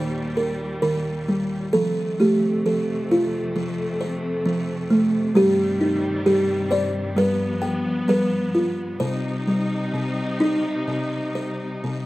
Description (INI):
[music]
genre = children's music, lullaby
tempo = 66 BPM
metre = 4/4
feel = rubato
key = C minor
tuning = A4 = 437 Hz
[part]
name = buzzing kalimba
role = melody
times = 0.0-12.1 s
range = C3 to G5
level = -21 LUFS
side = equal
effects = slapback echo
[part]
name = rich symphonic string section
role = sustained chords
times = 0.0-12.1 s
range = Eb2 to Eb4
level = -27 LUFS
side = left 1 dB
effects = none
[sound]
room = little or no reverb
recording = recorded outdoors, with no room sound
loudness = -20 LUFS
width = side -17 dB against mid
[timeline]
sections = 0.0-12.1 A section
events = none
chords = 0.0 Eb; 1.7 F; 5.4 Cm/G; 7.2 G7; 9.0 Cm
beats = 0.83 | 1.74 2.66 3.56 4.46 | 5.35 6.26 7.17 8.08 | 9.01 9.94 10.88 11.84